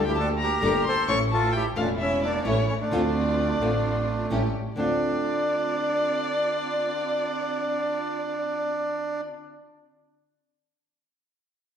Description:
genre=tango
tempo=131 BPM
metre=4/4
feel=rubato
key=D minor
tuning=A4 = 444 Hz
part: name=bandoneon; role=melody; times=0.0-9.2 s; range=A3 to C#5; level=-26 LUFS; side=right 2 dB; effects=none
part: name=dark violin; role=second line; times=0.0-9.2 s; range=C#5 to C#6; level=-30 LUFS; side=left 3 dB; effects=none
part: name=nylon-string guitar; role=accompaniment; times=0.0-9.3 s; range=D3 to A4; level=-30 LUFS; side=left 2 dB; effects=none
part: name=dark symphonic string section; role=stabs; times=0.0-9.2 s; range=A3 to G4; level=-35 LUFS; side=right 2 dB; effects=none
part: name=clear double bass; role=bass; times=0.0-5.0 s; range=E1 to D2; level=-29 LUFS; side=right 1 dB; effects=none
room=wet large studio reverb, RT60 1.5 s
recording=band playing live in one room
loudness=-23 LUFS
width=side -8 dB against mid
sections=0.0-4.8 A section; 4.8-8.4 B section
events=none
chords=0.0 Gmadd9; 1.1 A; 2.9 Dm7; 4.3 A7; 4.8 Dm7

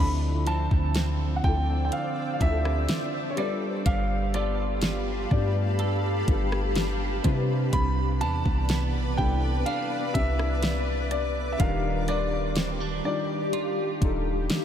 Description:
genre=contemporary R&B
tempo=62 BPM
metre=4/4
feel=straight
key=D dorian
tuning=A4 = 440 Hz
part: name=warm concert grand piano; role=melody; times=0.0-14.5 s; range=C#5 to B5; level=-32 LUFS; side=equal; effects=diffuse ambient delay
part: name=felt-muted upright piano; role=accompaniment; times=0.0-14.6 s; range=F3 to Eb5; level=-33 LUFS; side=left 5 dB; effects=ensemble chorus
part: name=granular cloud pad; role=sustained chords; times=1.2-14.6 s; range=G4 to E6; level=-33 LUFS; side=left 1 dB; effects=built-in reverb, sidechain pumping
part: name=clean electric guitar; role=arpeggios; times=0.0-14.6 s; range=C3 to A4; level=-33 LUFS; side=right 7 dB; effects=ensemble chorus, diffuse ambient delay
part: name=soft 808-style bass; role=bass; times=0.0-14.5 s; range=Eb1 to C3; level=-27 LUFS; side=equal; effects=none
part: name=smooth R&B drum kit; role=drums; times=0.5-14.6 s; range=hi-hat, kick drum, rim click, snare drum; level=-28 LUFS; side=equal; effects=none
room=moderate huge ambient reverb, RT60 3.9 s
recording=dreamy mix soaked in reverb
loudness=-24 LUFS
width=side -9 dB against mid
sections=0.0-14.6 A section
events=none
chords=0.0 Dm9; 3.4 G9; 7.2 Cmaj9; 11.6 Ebmaj9

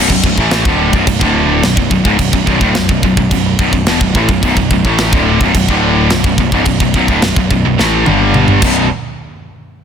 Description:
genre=heavy metal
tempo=107 BPM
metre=4/4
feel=straight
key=B minor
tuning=A4 = 442 Hz
part: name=distorted electric guitar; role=riff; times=0.0-8.9 s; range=B1 to A3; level=-16 LUFS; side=left 12 dB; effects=distortion
part: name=heavy high-gain guitar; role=riff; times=0.0-8.8 s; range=B1 to A3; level=-15 LUFS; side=right 12 dB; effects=distortion
part: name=overdriven picked electric bass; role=bass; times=0.0-8.9 s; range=B0 to A1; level=-16 LUFS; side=equal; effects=none
part: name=tight metal drum kit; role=drums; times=0.1-8.8 s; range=china cymbal, crash cymbal, kick drum, snare drum, toms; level=-15 LUFS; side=equal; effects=none
room=little or no reverb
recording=dense, heavily limited modern master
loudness=-9 LUFS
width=side -8 dB against mid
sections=0.0-8.9 A section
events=drum fill 7.8-8.9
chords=0.0 Bm; 8.1 G5; 8.6 B5; 8.9 N.C.

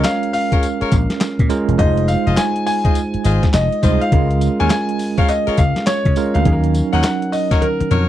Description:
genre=R&B, new jack swing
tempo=103 BPM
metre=4/4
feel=swing 63% on 16ths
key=Bb minor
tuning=A4 = 440 Hz
part: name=clear concert grand piano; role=melody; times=0.0-8.1 s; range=Bb4 to Ab5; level=-21 LUFS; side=left 2 dB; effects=tape echo
part: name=bell-like tine electric piano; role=accompaniment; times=0.0-8.1 s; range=Gb3 to C5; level=-20 LUFS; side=right 6 dB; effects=medium stereo tremolo
part: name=warm horn section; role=stabs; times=0.0-8.1 s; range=Eb4 to Eb5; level=-24 LUFS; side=left 4 dB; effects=none
part: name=vintage slap bass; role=bass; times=0.0-8.0 s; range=E1 to Db3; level=-17 LUFS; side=left 1 dB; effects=none
part: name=boom bap sampler-style drum kit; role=drums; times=0.0-8.1 s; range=handclaps, hi-hat, kick drum, snare drum, tambourine, toms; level=-18 LUFS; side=left 1 dB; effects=none
room=little or no reverb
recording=dry, close 1970s-style studio recording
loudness=-14 LUFS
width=side -12 dB against mid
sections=0.0-8.1 A section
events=drum fill 7.6-8.1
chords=0.0 Bbm7; 1.8 Fm7; 4.1 Db6; 6.5 Ebm7

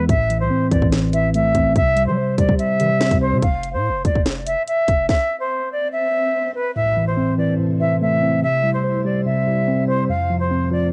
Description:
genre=hip hop, drill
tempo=144 BPM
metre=4/4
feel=half-time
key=A minor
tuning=A4 = 440 Hz
part: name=silver concert flute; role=melody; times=0.0-10.9 s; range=B4 to F5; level=-23 LUFS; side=equal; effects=cassette tape
part: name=mellow tine electric piano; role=accompaniment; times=0.0-3.4, 6.8-10.9 s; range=E2 to C5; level=-21 LUFS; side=equal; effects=cassette tape
part: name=long sustained 808-style bass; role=bass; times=0.1-5.1 s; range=F1 to G3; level=-28 LUFS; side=equal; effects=none
part: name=drill drum kit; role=drums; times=0.1-5.2 s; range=finger snaps, hi-hat, kick drum, snare drum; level=-22 LUFS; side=equal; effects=vintage 12-bit sampler grit, cassette tape
part: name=swell and impact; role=sound effects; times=5.5-8.4 s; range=none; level=-37 LUFS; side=equal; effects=none
part: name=glassy FM pad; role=sustained chords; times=7.4-10.9 s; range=C3 to C5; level=-33 LUFS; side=equal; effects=ensemble chorus, built-in reverb, cassette tape
room=little or no reverb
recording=home recording on cassette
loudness=-19 LUFS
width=mono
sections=0.0-6.8 A section; 6.8-10.9 B section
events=break 3.4-6.8; swell 5.5-6.8; impact 6.8-8.4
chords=0.1 Am; 1.8 C; 3.4 N.C.; 6.8 Am; 8.4 C; 10.1 F

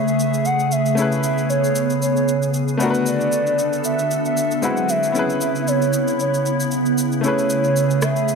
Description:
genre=amapiano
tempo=115 BPM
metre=4/4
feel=swing 55% on 16ths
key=A major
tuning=A4 = 440 Hz
part: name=hollow clarinet-like synth lead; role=melody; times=0.0-8.4 s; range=C#5 to F#5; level=-22 LUFS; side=right 1 dB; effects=chorus, ping-pong delay
part: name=clear grand piano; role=accompaniment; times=0.0-8.4 s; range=G#3 to B4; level=-25 LUFS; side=left 3 dB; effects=none
part: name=glassy FM pad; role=sustained chords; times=0.0-8.4 s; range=C#3 to A4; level=-20 LUFS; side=equal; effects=ensemble chorus, built-in reverb
part: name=electronic shaker and rim click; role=drums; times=0.1-8.4 s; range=none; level=-29 LUFS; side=equal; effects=none
room=light reverb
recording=none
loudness=-17 LUFS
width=side -5 dB against mid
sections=0.0-8.4 A section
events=none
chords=0.0 Amaj7; 2.8 Bm7; 4.6 G#7alt; 5.2 C#m7; 7.2 Amaj7

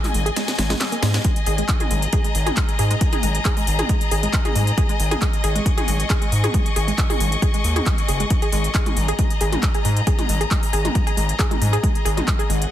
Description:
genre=driving peak-time techno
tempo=136 BPM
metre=4/4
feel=straight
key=unclear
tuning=A4 = 440 Hz
part: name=wide unison pluck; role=riff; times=0.0-12.6 s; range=G#3 to G#4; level=-27 LUFS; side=right 1 dB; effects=tube saturation, sidechain pumping, dub echo
part: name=techno drum kit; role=drums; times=0.0-12.7 s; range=handclaps, hi-hat, snare drum, toms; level=-25 LUFS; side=equal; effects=none
part: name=clear studio string section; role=texture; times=0.0-12.7 s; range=G#4 to C#6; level=-27 LUFS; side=left 3 dB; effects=sidechain pumping
part: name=gritty driven synth bass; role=bass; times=0.1-12.7 s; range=F#1 to G#2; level=-21 LUFS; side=equal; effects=sidechain pumping
part: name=electronic kick drum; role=drums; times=1.2-12.4 s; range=none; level=-21 LUFS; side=equal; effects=none
room=little or no reverb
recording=dense, heavily limited modern master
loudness=-17 LUFS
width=side -12 dB against mid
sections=0.0-12.7 A section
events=kick drops out 0.4-1.2; drum fill 0.4-1.2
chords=0.0 G#5

